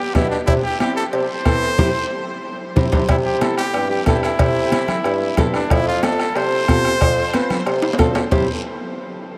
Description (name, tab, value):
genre	latin, cumbia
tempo	184 BPM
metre	4/4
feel	straight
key	C major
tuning	A4 = 441 Hz
part	clear trumpet	melody	0.0-8.5 s	D4 to C5	-25 LUFS	equal	diffuse ambient delay
part	flamenco guitar	accompaniment	0.1-8.5 s	B3 to B4	-27 LUFS	equal	none
part	mellow bassoon	bass	0.1-8.5 s	D2 to E3	-24 LUFS	equal	none
part	bombo	percussion	0.1-8.4 s	none	-23 LUFS	equal	none
part	congas	percussion	0.1-8.4 s	none	-29 LUFS	equal	none
part	guiro	percussion	0.2-8.4 s	none	-37 LUFS	equal	none
part	timbales and cowbell	percussion	0.2-8.4 s	none	-31 LUFS	equal	none
room	wet huge ambient reverb, RT60 9.0 s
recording	dreamy mix soaked in reverb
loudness	-18 LUFS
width	mono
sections	0.0-3.1 A section; 3.1-8.3 B section; 8.3-9.4 C section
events	drum fill 1.8-3.1, 7.8-8.3; band accent 1.8-3.1; nylon-string guitar fill 2.4-3.1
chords	0.5 C; 5.7 F; 8.3 C